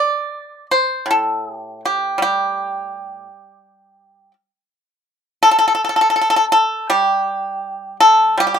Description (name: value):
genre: chinese traditional, Chinese solo plucked strings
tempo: 81 BPM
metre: 4/4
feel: rubato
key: unclear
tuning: A4 = 440 Hz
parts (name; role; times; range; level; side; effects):
- pipa; solo; 0.0-8.6 s; A2 to D5; -14 LUFS; equal; none
room: moderate studio reverb, RT60 0.5 s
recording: minimal, uncompressed stereo recording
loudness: -14 LUFS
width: side -7 dB against mid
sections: 0.0-8.6 A section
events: none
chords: none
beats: 0.30 1.06 1.82 | 2.56 3.28 3.98 4.70 | 5.44 6.18 6.91 7.64 | 8.38